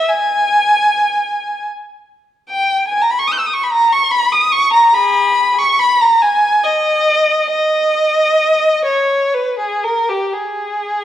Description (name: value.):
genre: classical, free, expressive piece for unaccompanied violin.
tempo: 58-78 BPM.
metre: 3/4.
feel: rubato.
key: G# minor.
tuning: A4 = 439 Hz.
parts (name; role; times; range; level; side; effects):
rich violin; solo; 0.0-11.0 s; G4 to G6; -12 LUFS; equal; none.
room: moderate recital hall reverb, RT60 1.4 s.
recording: worn, warbling old tape, cassette tape, warbly pitch drift.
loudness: -12 LUFS.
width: side -12 dB against mid.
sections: 0.0-11.0 A section.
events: none.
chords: none.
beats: | 0.09 0.86 1.67 | 2.49 3.30 4.11 | 4.94 5.80 6.65 | 7.51 8.39 9.33 | 10.33.